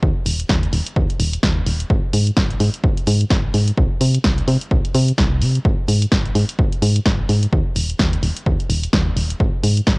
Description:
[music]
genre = piano house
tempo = 128 BPM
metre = 4/4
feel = swing 58% on 16ths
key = Ab major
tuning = A4 = 439 Hz
[part]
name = solid FM bass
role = bass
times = 0.0-10.0 s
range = Eb1 to C3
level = -18 LUFS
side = equal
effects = sidechain pumping
[part]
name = electronic kick drum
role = drums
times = 0.0-10.0 s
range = none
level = -19 LUFS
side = equal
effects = cassette tape
[part]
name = punchy analog drum machine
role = drums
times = 0.3-10.0 s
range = hi-hat, snare drum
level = -22 LUFS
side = equal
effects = cassette tape
[sound]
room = little or no reverb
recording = home recording on cassette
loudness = -15 LUFS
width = side -31 dB against mid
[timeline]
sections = 0.0-10.0 A section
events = none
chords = none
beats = | 0.03 0.49 0.96 1.43 | 1.90 2.37 2.84 3.31 | 3.77 4.24 4.71 5.18 | 5.65 6.12 6.59 7.06 | 7.53 7.99 8.46 8.93 | 9.40 9.87

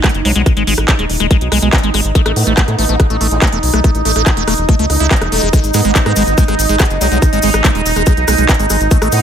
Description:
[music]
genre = psychedelic trance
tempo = 142 BPM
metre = 4/4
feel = straight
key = G# phrygian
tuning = A4 = 440 Hz
[part]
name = bubbling stepped-filter texture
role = sustained chords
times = 0.0-9.2 s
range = D#4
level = -18 LUFS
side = right 3 dB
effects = chorus, built-in reverb, sidechain pumping
[part]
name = liquid acid bass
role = riff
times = 0.0-9.1 s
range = G#3 to E4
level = -18 LUFS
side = moving between left 6 dB and right 4 dB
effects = phaser, auto-pan, sidechain pumping, ping-pong delay
[part]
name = electronic kick drum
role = drums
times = 0.0-9.0 s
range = none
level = -11 LUFS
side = equal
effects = none
[part]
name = techno drum kit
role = drums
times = 0.0-9.2 s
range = handclaps, hi-hat, rim click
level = -18 LUFS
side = equal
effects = overdrive
[part]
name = round analog bass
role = bass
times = 0.1-9.2 s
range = D#1 to A2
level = -16 LUFS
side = equal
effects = none
[part]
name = formant-sweep wobble bass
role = second line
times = 0.2-9.2 s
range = F#3 to B3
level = -27 LUFS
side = right 2 dB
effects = ensemble chorus, sidechain pumping, high-pass filter, digital delay
[part]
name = cabasa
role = percussion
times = 5.5-9.2 s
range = none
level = -23 LUFS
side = left 6 dB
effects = none
[sound]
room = light reverb, digital ambience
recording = none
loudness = -10 LUFS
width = side -9 dB against mid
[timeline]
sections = 0.0-9.2 A section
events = none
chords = 0.0 G#5; 2.2 A5; 5.5 G#5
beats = 0.04 | 0.46 0.88 1.31 1.73 | 2.15 2.57 3.00 3.42 | 3.84 4.26 4.69 5.11 | 5.53 5.95 6.38 6.80 | 7.22 7.64 8.07 8.49 | 8.91

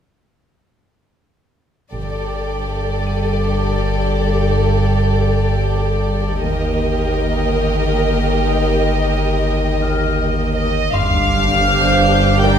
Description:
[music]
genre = cinematic, suspense film score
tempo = 80 BPM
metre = 3/4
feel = straight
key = G minor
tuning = A4 = 440 Hz
[part]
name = warm symphonic violin section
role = melody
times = 1.9-12.6 s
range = D5 to G5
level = -21 LUFS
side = equal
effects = none
[part]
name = warm studio violin section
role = second line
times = 1.9-12.6 s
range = G4 to C5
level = -21 LUFS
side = equal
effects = none
[part]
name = warm studio cello section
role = bass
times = 1.9-12.6 s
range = Eb2 to G2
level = -21 LUFS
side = right 1 dB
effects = none
[part]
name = warm symphonic double bass section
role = bass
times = 1.9-2.6, 6.4-7.1, 10.9-12.6 s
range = G1 to Eb2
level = -22 LUFS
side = right 3 dB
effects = none
[part]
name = warm sub bass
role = drone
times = 1.9-12.6 s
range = G1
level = -21 LUFS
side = left 1 dB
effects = none
[part]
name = concert harp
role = texture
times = 3.1-12.6 s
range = D5 to Eb7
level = -28 LUFS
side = left 4 dB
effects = none
[part]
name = dark symphonic viola section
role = accompaniment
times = 10.9-12.6 s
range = D4 to G4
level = -21 LUFS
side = left 1 dB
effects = none
[part]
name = sub drop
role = sound effects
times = 10.9-12.6 s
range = none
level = -24 LUFS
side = equal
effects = none
[part]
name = warm symphonic violin section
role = texture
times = 10.9-12.6 s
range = D6 to G6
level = -29 LUFS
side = left 1 dB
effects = none
[sound]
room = moderate scoring stage reverb, RT60 1.7 s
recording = minimal, uncompressed stereo recording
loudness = -15 LUFS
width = side -8 dB against mid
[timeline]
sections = 1.9-10.9 A section; 10.9-12.6 B section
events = impact 10.9-12.6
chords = 1.9 Gsus2; 6.4 Eb/G; 10.9 G5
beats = | 1.93 2.68 3.43 | 4.18 4.93 5.68 | 6.43 7.18 7.93 | 8.68 9.43 10.18 | 10.93 11.68 12.43

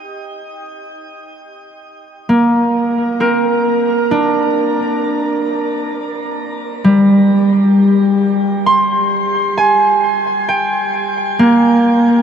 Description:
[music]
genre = ambient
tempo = 66 BPM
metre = 4/4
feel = straight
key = unclear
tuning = A4 = 445 Hz
[part]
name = concert harp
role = solo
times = 0.0-12.2 s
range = G3 to C6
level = -12 LUFS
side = right 1 dB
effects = tape echo
[sound]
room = wet shimmer reverb, RT60 8.9 s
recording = none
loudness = -12 LUFS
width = side -8 dB against mid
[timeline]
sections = 0.0-12.2 A section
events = none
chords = 0.0 Bb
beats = | 0.03 0.94 1.84 2.75 | 3.66 4.57 5.48 6.39 | 7.30 8.21 9.12 10.03 | 10.94 11.84

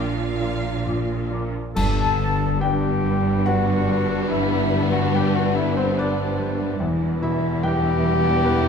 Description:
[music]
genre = cinematic, emotional film score for orchestra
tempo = 72 BPM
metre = 3/4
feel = rubato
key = G major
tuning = A4 = 437 Hz
[part]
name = warm studio violin section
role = melody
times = 0.0-8.7 s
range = D4 to F5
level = -35 LUFS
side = left 3 dB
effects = none
[part]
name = clear clarinet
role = second line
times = 0.0-8.7 s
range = C4 to A4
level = -29 LUFS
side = left 3 dB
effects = none
[part]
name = dark studio violin section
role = second line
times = 0.0-8.7 s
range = B3 to F4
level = -32 LUFS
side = left 3 dB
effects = none
[part]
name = mellow large flute ensemble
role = second line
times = 0.0-8.7 s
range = C5 to D6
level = -28 LUFS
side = left 3 dB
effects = none
[part]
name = warm grand piano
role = accompaniment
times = 0.0-8.7 s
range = Bb1 to A5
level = -27 LUFS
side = left 1 dB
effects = none
[part]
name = warm studio viola section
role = accompaniment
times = 0.0-8.7 s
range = G3 to F4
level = -35 LUFS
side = equal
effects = none
[part]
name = mellow French horn section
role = sustained chords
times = 0.0-8.7 s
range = F3 to E4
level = -28 LUFS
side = left 3 dB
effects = none
[part]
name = concert harp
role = arpeggios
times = 0.0-8.7 s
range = G2 to B5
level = -29 LUFS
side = left 7 dB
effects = none
[part]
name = rich studio double bass section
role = bass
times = 0.0-8.7 s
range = E1 to Bb1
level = -28 LUFS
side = right 4 dB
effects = none
[part]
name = warm studio cello section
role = bass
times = 0.0-8.7 s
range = E2 to Bb2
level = -26 LUFS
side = right 4 dB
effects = none
[part]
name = clash cymbals and concert bass drum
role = percussion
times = 1.8-3.4 s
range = none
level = -30 LUFS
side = right 1 dB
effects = none
[sound]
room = wet recital hall reverb, RT60 1.8 s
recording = none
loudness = -19 LUFS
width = side -6 dB against mid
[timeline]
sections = 0.0-1.8 A section; 1.8-8.7 B section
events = band accent 1.8-2.6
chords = 0.0 Bb; 1.8 G; 6.8 Em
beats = 0.85 | 1.75 2.61 3.46 | 4.30 5.13 5.97 | 6.80 7.64 8.46

